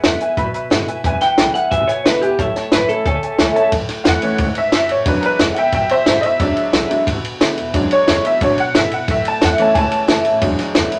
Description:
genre	rockabilly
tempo	179 BPM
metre	4/4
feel	straight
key	A major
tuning	A4 = 439 Hz
part	honky-tonk upright piano	accompaniment	0.0-11.0 s	E3 to B5	-21 LUFS	equal	none
part	picked steel-string acoustic guitar	accompaniment	0.0-11.0 s	E2 to E4	-24 LUFS	equal	none
part	upright bass	bass	0.0-11.0 s	E1 to E2	-28 LUFS	equal	none
part	compact cocktail drum kit	drums	0.0-11.0 s	hi-hat, kick drum, ride cymbal, snare drum	-20 LUFS	equal	none
part	electric guitar through a small old amp	melody	1.2-3.7 s	G4 to G5	-20 LUFS	equal	none
room	wet studio reverb, RT60 0.5 s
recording	none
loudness	-16 LUFS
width	mono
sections	0.0-3.7 A section; 3.7-11.0 B section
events	honky-tonk piano solo 3.7-11.0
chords	0.0 E7; 2.4 A; 5.1 E7; 9.1 A; 10.4 E7

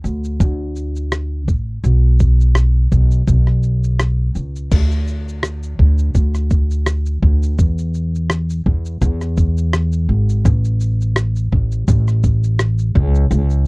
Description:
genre	acoustic pop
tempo	84 BPM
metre	4/4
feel	swing 55% on 16ths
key	unclear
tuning	A4 = 440 Hz
part	upright bass	bass	0.0-13.7 s	G#1 to E2	-15 LUFS	equal	none
part	dusty soul sampler-style drum kit	drums	0.0-13.7 s	crash cymbal, kick drum, rim click, shaker	-17 LUFS	equal	none
room	little or no reverb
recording	dry, close 1970s-style studio recording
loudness	-14 LUFS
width	side -31 dB against mid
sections	0.0-4.7 A section; 4.7-13.7 B section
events	none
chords	none

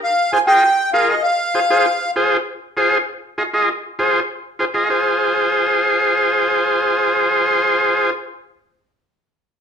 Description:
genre	latin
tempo	197 BPM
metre	4/4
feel	straight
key	F minor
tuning	A4 = 440 Hz
part	accordion	melody	0.0-2.1 s	Eb5 to Ab5	-15 LUFS	equal	light tremolo tuning
part	overdriven combo organ	accompaniment	0.3-8.1 s	F4 to Eb5	-16 LUFS	equal	none
room	wet large studio reverb, RT60 0.9 s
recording	band playing live in one room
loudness	-15 LUFS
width	side -7 dB against mid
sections	0.0-2.5 A section; 2.5-4.9 B section; 4.9-7.3 C section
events	none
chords	0.0 Fm

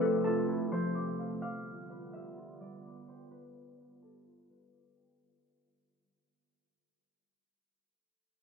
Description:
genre	hip hop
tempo	127 BPM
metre	4/4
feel	half-time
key	unclear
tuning	A4 = 440 Hz
part	concert harp	melody	0.0-6.5 s	A4 to F5	-37 LUFS	left 5 dB	low-pass filter, digital delay
part	warbly tape-like pad	sustained chords	0.0-5.2 s	C3 to F4	-38 LUFS	right 3 dB	chorus, built-in reverb
part	mellow electric guitar	arpeggios	0.0-5.2 s	F3 to D6	-36 LUFS	equal	lush chorus, low-pass filter, digital delay
part	wind-like tuned noise texture	texture	0.0-5.2 s	G3 to E6	-48 LUFS	left 2 dB	built-in reverb
room	moderate lush hall reverb, RT60 2.2 s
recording	low-pass filter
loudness	-32 LUFS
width	side -5 dB against mid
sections	0.0-5.2 A section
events	fade-out 0.0-5.2; filter sweep 0.0-5.2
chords	0.0 Fmaj7; 1.4 G7

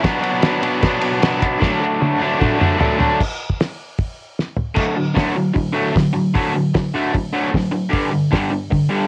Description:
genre	garage rock duo or trio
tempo	152 BPM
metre	4/4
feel	straight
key	D major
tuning	A4 = 440 Hz
part	crunchy overdriven guitar	riff	0.0-9.1 s	G2 to D4	-20 LUFS	equal	cassette tape
part	cloth-damped thuddy drum kit	drums	0.0-8.8 s	crash cymbal, hi-hat, kick drum, ride cymbal, snare drum, toms	-23 LUFS	equal	cassette tape
room	little or no reverb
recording	home recording on cassette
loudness	-19 LUFS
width	mono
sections	0.0-3.2 A section; 3.2-4.8 B section; 4.8-9.1 C section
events	drum fill 1.6-3.2, 4.4-4.8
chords	0.0 Bm; 1.6 D; 3.2 N.C.; 4.8 D; 7.9 G5

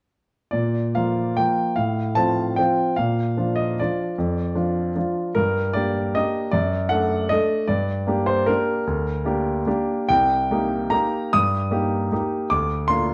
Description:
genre	classical, piano waltz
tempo	131-162 BPM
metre	3/4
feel	rubato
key	Bb major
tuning	A4 = 440 Hz
part	clear baby grand piano	solo	0.5-13.1 s	C2 to Eb6	-22 LUFS	equal	none
room	wet stone room reverb, RT60 1.0 s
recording	dark, warm production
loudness	-22 LUFS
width	mono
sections	0.5-13.1 A section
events	none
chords	0.5 Bb; 1.8 F/A; 3.0 Bb; 5.4 Gm; 6.5 D/F#; 7.7 Gm; 10.1 Cm7; 12.5 Bb/D

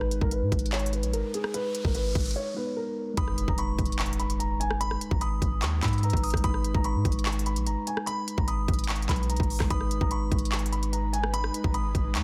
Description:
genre	hip hop, trap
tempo	147 BPM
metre	4/4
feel	half-time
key	G# minor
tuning	A4 = 439 Hz
part	dark concert grand piano	melody	0.0-12.2 s	G#4 to C#6	-36 LUFS	equal	low-pass filter, delay
part	mellow tine electric piano	accompaniment	0.0-12.2 s	G#3 to B4	-38 LUFS	equal	low-pass filter
part	warm 808-style bass	bass	0.0-12.2 s	G#1 to G#2	-31 LUFS	equal	none
part	trap drum kit	drums	0.0-12.2 s	handclaps, hi-hat, kick drum, rim click	-31 LUFS	equal	none
part	riser and impact	sound effects	1.2-4.8 s	none	-42 LUFS	equal	none
part	delicate synth tine bell	second line	3.2-12.2 s	B5 to E6	-42 LUFS	equal	chorus, delay
part	ethereal airy pad	sustained chords	10.8-12.2 s	G#3 to B4	-42 LUFS	equal	ensemble chorus, built-in reverb
room	digital ambience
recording	dense, heavily limited modern master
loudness	-28 LUFS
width	mono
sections	0.0-3.2 A section; 3.2-12.2 B section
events	riser 1.2-3.2; break 2.4-3.2; impact 3.2-4.8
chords	0.0 G#m

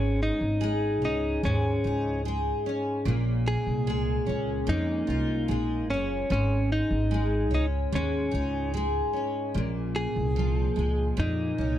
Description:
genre	acoustic pop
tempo	74 BPM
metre	4/4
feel	straight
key	Bb minor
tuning	A4 = 440 Hz
part	direct-recorded clean electric guitar	melody	0.0-11.8 s	Db4 to Ab4	-29 LUFS	equal	none
part	picked twelve-string acoustic guitar	accompaniment	0.0-11.8 s	Ab2 to F4	-29 LUFS	equal	double-tracked left and right
part	upright bass	bass	0.0-11.8 s	Gb1 to F2	-28 LUFS	equal	none
room	little or no reverb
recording	dry, close 1970s-style studio recording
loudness	-25 LUFS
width	side -11 dB against mid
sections	0.0-11.8 A section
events	none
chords	0.0 Absus4; 3.0 Bbm7; 6.3 Absus4; 9.6 Bbm7

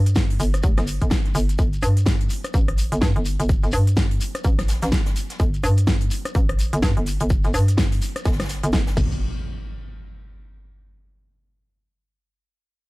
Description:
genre	bass house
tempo	126 BPM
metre	4/4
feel	swing 60% on 16ths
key	unclear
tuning	A4 = 439 Hz
part	hollow knocking FM bass	bass	0.0-9.2 s	F1 to G2	-21 LUFS	equal	overdrive, sidechain pumping
part	big-room dance drum kit	drums	0.1-9.1 s	crash cymbal, hi-hat, rim click, snare drum	-28 LUFS	equal	small room ambience
part	shekere	percussion	0.1-9.2 s	none	-37 LUFS	left 3 dB	none
part	compact cocktail drum kit	drums	0.2-9.0 s	hi-hat, shaker, snare drum	-40 LUFS	left 2 dB	high-pass filter on hats, small room ambience, high-pass filter on snare, high-pass filter on perc, high-pass filter on room
part	electronic kick drum	drums	0.2-9.1 s	none	-21 LUFS	equal	small room ambience
part	impact	sound effects	9.0-10.9 s	none	-32 LUFS	equal	none
room	small room ambience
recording	dark, warm production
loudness	-18 LUFS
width	side -21 dB against mid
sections	0.0-9.2 A section; 9.2-11.1 B section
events	none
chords	none

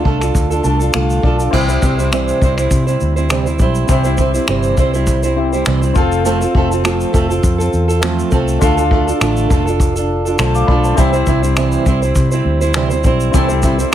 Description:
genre	acoustic pop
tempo	102 BPM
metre	4/4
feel	swing 55% on 16ths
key	C major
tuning	A4 = 443 Hz
part	clear concert grand piano	accompaniment	0.0-13.9 s	C4 to D6	-22 LUFS	left 7 dB	none
part	fingerpicked steel-string acoustic guitar	accompaniment	0.0-13.9 s	C3 to C5	-16 LUFS	right 4 dB	none
part	vintage muted fingered electric bass	bass	0.1-13.8 s	F1 to C3	-17 LUFS	left 1 dB	none
part	vintage brush drum kit	drums	0.1-13.9 s	crash cymbal, finger snaps, kick drum, shaker	-18 LUFS	equal	none
room	light reverb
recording	heavily compressed radio sound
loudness	-12 LUFS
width	side -11 dB against mid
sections	0.0-1.5 A section; 1.5-13.9 B section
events	grand piano fill 0.3-1.5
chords	0.0 Dm; 1.5 C; 6.0 F; 8.6 Dm; 11.0 C

